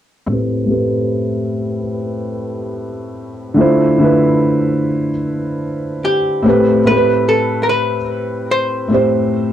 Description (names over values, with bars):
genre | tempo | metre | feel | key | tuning
lo-fi hip hop | 73 BPM | 4/4 | swing 55% on 16ths | A minor | A4 = 440 Hz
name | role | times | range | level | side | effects
felt-muted upright piano | accompaniment | 0.3-9.5 s | A2 to C5 | -14 LUFS | equal | low-pass filter
archtop guitar, miked and amplified | melody | 6.0-9.5 s | G4 to C5 | -17 LUFS | left 1 dB | none
room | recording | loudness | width
wet studio reverb, RT60 0.5 s | cassette tape | -13 LUFS | side -10 dB against mid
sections
0.3-6.9 A section; 6.9-9.5 B section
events
filter sweep on felt piano 0.3-6.9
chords
0.3 Am9; 3.6 Dm9; 6.5 Am9